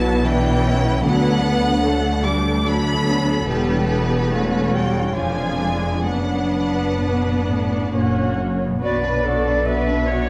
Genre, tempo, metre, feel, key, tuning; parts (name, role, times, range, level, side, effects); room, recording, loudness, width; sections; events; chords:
classical, slow romantic movement for symphony orchestra; 64-76 BPM; 3/4; rubato; B minor; A4 = 436 Hz
clear studio violin section; melody; 0.0-10.3 s; B4 to D6; -29 LUFS; equal
dark studio violin section; second line; 0.0-10.3 s; B3 to C#5; -28 LUFS; equal
rich studio viola section; accompaniment; 0.0-10.3 s; E3 to C#5; -26 LUFS; equal
concert harp; arpeggios; 0.0-10.3 s; E2 to C#5; -29 LUFS; equal
rich studio cello section; bass; 0.0-10.3 s; D2 to B2; -27 LUFS; equal
rich studio double bass section; bass; 0.0-10.3 s; E1 to D2; -26 LUFS; equal
silver concert flute; second line; 8.8-10.3 s; D5 to E5; -24 LUFS; equal
wet scoring stage reverb, RT60 1.7 s; vinyl crackle; -20 LUFS; mono
0.0-8.8 A section; 8.8-10.3 B section
0.0 Bm; 1.0 Bm/D; 3.5 C#m7b5/E; 5.2 Fdim7; 6.1 Bm/F#; 7.9 F#; 8.8 Bm